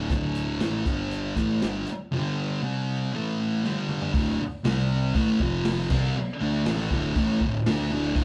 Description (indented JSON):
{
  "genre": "garage rock duo or trio",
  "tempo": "119 BPM",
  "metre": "4/4",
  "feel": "straight",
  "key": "D minor",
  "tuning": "A4 = 440 Hz",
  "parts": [
    { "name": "thick fuzz guitar", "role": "riff", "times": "0.0-8.2 s", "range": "D2 to D4", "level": "-28 LUFS", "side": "equal", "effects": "distortion" },
    { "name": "fuzz picked electric bass", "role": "bass", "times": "0.0-8.2 s", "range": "D1 to D2", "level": "-36 LUFS", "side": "equal", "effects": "overdrive" },
    { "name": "vintage drum kit", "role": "drums", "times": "0.1-8.2 s", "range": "crash cymbal, hi-hat, kick drum, snare drum, toms", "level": "-31 LUFS", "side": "equal", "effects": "none" }
  ],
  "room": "wet studio reverb, RT60 0.7 s",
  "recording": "band playing live in one room",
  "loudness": "-26 LUFS",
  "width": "mono",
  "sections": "0.0-4.1 A section; 4.1-8.2 B section",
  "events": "drum fill 3.6-4.1",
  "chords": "0.0 D5; 0.9 G5; 1.4 D5; 2.1 G5; 2.6 C5; 3.1 A5; 3.6 G5; 4.1 D5; 4.6 C5; 5.1 A5; 5.4 F5; 5.9 D5",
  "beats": "| 0.10 0.60 1.11 1.62 | 2.12 2.63 3.13 3.64 | 4.14 4.64 5.15 5.65 | 6.15 6.65 7.15 7.65 | 8.15"
}